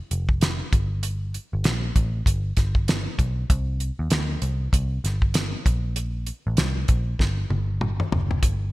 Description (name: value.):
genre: indie pop, bedroom pop.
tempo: 97 BPM.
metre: 4/4.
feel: swing 60% on 16ths.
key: unclear.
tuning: A4 = 444 Hz.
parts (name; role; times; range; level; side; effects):
vintage muted picked electric bass; bass; 0.1-8.7 s; F1 to Eb2; -25 LUFS; equal; none.
damped 70s drum kit; drums; 0.1-8.6 s; hi-hat, kick drum, snare drum, toms; -22 LUFS; equal; gated reverb.
room: little or no reverb.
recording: bright 1980s-style digital production.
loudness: -22 LUFS.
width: side -19 dB against mid.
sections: 0.0-8.4 A section.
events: drum fill 7.2-8.4.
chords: none.